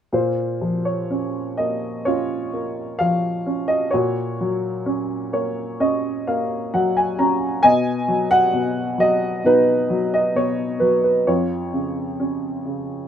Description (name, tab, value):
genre	classical, lyrical solo piano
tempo	65 BPM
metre	4/4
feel	rubato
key	Bb minor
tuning	A4 = 440 Hz
part	warm upright piano	solo	0.1-13.1 s	F2 to Bb5	-18 LUFS	equal	none
room	light reverb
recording	minimal, uncompressed stereo recording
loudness	-18 LUFS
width	side -9 dB against mid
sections	0.1-13.1 A section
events	upright piano fill 4.9-7.6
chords	0.1 Bbm; 3.9 Gb/Bb; 7.6 B; 11.3 Db/F